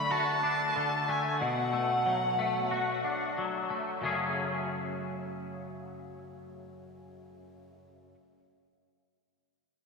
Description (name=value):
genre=rock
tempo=92 BPM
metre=4/4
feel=straight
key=F# minor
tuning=A4 = 440 Hz
part: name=muted violin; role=melody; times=0.0-3.3 s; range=F#5 to B5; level=-31 LUFS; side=right 1 dB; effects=diffuse ambient delay
part: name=twangy electric guitar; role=arpeggios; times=0.0-8.2 s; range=F#2 to G#4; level=-32 LUFS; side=left 2 dB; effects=ensemble chorus, diffuse ambient delay
room=wet lush hall reverb, RT60 2.6 s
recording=dreamy mix soaked in reverb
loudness=-28 LUFS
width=side -4 dB against mid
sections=0.0-4.0 A section; 4.0-6.6 B section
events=none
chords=0.0 D; 1.4 Bm7; 4.0 F#madd9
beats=0.11 0.76 | 1.41 2.06 2.72 3.37 | 4.03 4.68 5.33 5.99